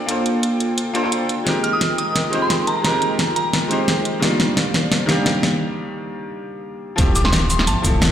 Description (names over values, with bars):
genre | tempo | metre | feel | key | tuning
liquid drum and bass | 174 BPM | 4/4 | swing 54% on 16ths | unclear | A4 = 445 Hz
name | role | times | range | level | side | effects
bright grand piano | accompaniment | 0.0-8.1 s | Eb3 to D5 | -22 LUFS | equal | tape echo
airy breathy pad | sustained chords | 0.0-8.1 s | Eb3 to G5 | -26 LUFS | equal | chorus, sidechain pumping
pop drum kit | drums | 0.1-8.1 s | hi-hat, shaker, snare drum | -20 LUFS | equal | none
soft synth bell | melody | 1.6-3.6, 7.2-8.1 s | A5 to F6 | -23 LUFS | right 1 dB | chorus, tape echo
dark detuned saw bass | bass | 7.0-8.1 s | D1 to A1 | -20 LUFS | equal | none
crunchy breakbeat drum kit | drums | 7.0-8.1 s | hi-hat, snare drum | -29 LUFS | equal | high-pass filter on hats, high-pass filter on snare, high-pass filter on room
electronic kick drum | drums | 7.0-7.9 s | none | -19 LUFS | equal | none
room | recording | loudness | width
wet digital room reverb, RT60 0.9 s, studio ambience | played on a big sound system in a bare room, large studio reverb | -16 LUFS | side -10 dB against mid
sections
0.0-7.0 A section; 7.0-8.1 B section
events
build-up 0.0-7.0; drum fill 1.5-5.6; break 5.6-7.0; drop 7.0-8.1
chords
0.0 Gm11; 1.3 Fm11; 4.2 Cm11; 7.0 Dm11